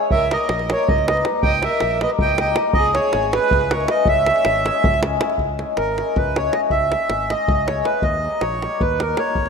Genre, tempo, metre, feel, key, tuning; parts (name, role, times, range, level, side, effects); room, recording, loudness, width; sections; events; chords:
balkan folk, Balkan wedding band; 318 BPM (eighths); 7/8; straight; C# dorian sharp4; A4 = 440 Hz
cimbalom; accompaniment; 0.0-9.4 s; G3 to G#4; -22 LUFS; left 6 dB
accordion; melody; 0.1-9.5 s; A#4 to G5; -20 LUFS; right 4 dB
dark violin; second line; 0.1-5.0 s; G#4 to D#5; -26 LUFS; left 1 dB
modern bright fingered electric bass; bass; 0.1-9.5 s; G#1 to D#2; -27 LUFS; equal
davul; percussion; 0.1-9.5 s; -23 LUFS; right 1 dB
moderate lush hall reverb, RT60 2.3 s; rough home demo mix; -16 LUFS; side -5 dB against mid
0.0-5.4 A section; 5.4-9.5 B section
accordion solo 5.4-9.5
0.1 D#; 2.7 C#m; 8.0 D#